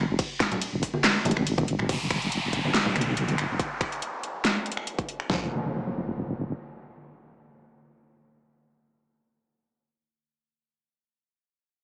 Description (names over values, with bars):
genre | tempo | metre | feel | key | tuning
deep dubstep | 141 BPM | 4/4 | swing 54% on 16ths, half-time | F# minor | A4 = 440 Hz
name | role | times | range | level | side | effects
deep soft wobble bass | bass | 0.0-6.5 s | F#1 to B1 | -32 LUFS | equal | chorus, tube saturation
dubstep drum kit | drums | 0.2-5.4 s | kick drum, snare drum | -33 LUFS | equal | overdrive
dubstep drum kit | drums | 0.2-5.3 s | finger snaps, handclaps, hi-hat, ride cymbal, snare drum | -29 LUFS | equal | none
congas | percussion | 0.5-3.4 s | none | -34 LUFS | equal | dub echo
downlifter and impact | sound effects | 1.9-10.2 s | none | -35 LUFS | equal | none
room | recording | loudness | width
wet plate reverb, RT60 1.1 s | dreamy mix soaked in reverb, small speaker sound | -27 LUFS | mono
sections
0.0-1.9 A section; 1.9-5.3 B section; 5.3-8.7 C section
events
drop 0.0-1.9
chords
none